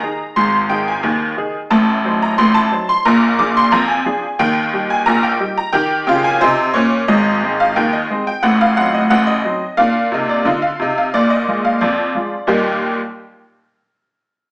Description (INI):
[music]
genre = ragtime piano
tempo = 89 BPM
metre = 2/4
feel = straight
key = Eb major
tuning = A4 = 439 Hz
[part]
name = honky-tonk upright piano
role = solo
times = 0.0-13.0 s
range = Ab1 to D6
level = -13 LUFS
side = equal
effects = none
[sound]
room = wet stone room reverb, RT60 1.0 s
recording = band playing live in one room, small speaker sound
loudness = -13 LUFS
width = side -31 dB against mid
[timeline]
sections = 0.0-12.5 A section; 12.5-13.8 B section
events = none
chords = 0.0 Ab5; 1.7 Adim7; 3.1 Bb7; 4.4 Eb; 5.7 Eb7; 7.1 Ab; 8.4 Adim7; 9.8 Bbsus4; 11.1 Bb7; 12.5 Eb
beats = | 0.37 1.04 | 1.71 2.38 | 3.05 3.72 | 4.40 5.07 | 5.74 6.41 | 7.09 7.76 | 8.43 9.11 | 9.78 10.46 | 11.13 11.81 | 12.48